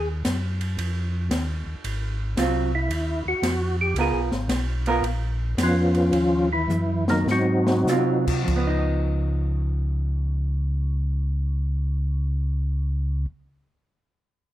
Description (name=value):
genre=soul jazz organ trio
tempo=96-113 BPM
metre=4/4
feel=swing 66% on 8ths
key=Db mixolydian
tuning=A4 = 440 Hz
part: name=percussive tonewheel organ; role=melody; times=0.0-8.3 s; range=Eb3 to Ab4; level=-22 LUFS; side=equal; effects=slow rotary speaker, chorus vibrato
part: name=mellow tonewheel organ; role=bass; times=0.0-13.3 s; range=Ab1 to C3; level=-24 LUFS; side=equal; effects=slow rotary speaker
part: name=open jazz drum kit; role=drums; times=0.2-8.7 s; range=crash cymbal, hi-hat, kick drum, ride cymbal, snare drum, toms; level=-29 LUFS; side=left 1 dB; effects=none
part: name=vintage hollow-body jazz guitar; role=accompaniment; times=2.4-13.5 s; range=F3 to Bb4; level=-26 LUFS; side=right 4 dB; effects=none
room=light reverb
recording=none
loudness=-21 LUFS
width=side -14 dB against mid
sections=0.0-8.5 A section; 8.5-13.5 B section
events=tonewheel organ solo 0.0-8.5; slowing down 4.0-8.5; drum fill 6.7-7.9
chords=0.0 Ebm; 1.8 Ab6; 4.0 Db6; 6.1 Ebm7; 7.3 Ab6; 8.5 Db9